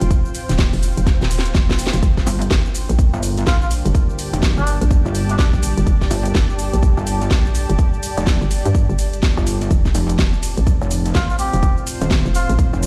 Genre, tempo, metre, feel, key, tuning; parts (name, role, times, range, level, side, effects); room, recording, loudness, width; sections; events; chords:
bass house; 125 BPM; 4/4; swing 62% on 16ths; G minor; A4 = 439 Hz
dark analog pad; sustained chords; 0.0-12.9 s; G3 to C5; -32 LUFS; equal
hollow knocking FM bass; bass; 0.0-12.7 s; Eb1 to G2; -21 LUFS; equal; tube saturation, sidechain pumping
house drum kit; drums; 0.0-12.9 s; hi-hat, shaker, snare drum; -27 LUFS; equal; studio reverb
granular cloud pad; texture; 0.0-12.9 s; F4 to A5; -32 LUFS; equal; built-in reverb, sidechain pumping
electronic kick drum; drums; 0.1-12.7 s; -20 LUFS; equal; studio reverb
pulsing pluck wobble bass; bass; 2.3-12.9 s; Eb1 to G1; -22 LUFS; equal; chorus, tube saturation, sidechain pumping
trumpet with cup mute; melody; 3.5-5.5, 11.1-12.5 s; D4 to G4; -29 LUFS; equal; dub echo
digital ambience; played on a big sound system in a bare room, stone room reverb, lossy compression artefacts; -18 LUFS; mono
0.0-12.9 A section
drum fill 1.1-2.0
0.0 F; 2.0 Gm; 9.7 F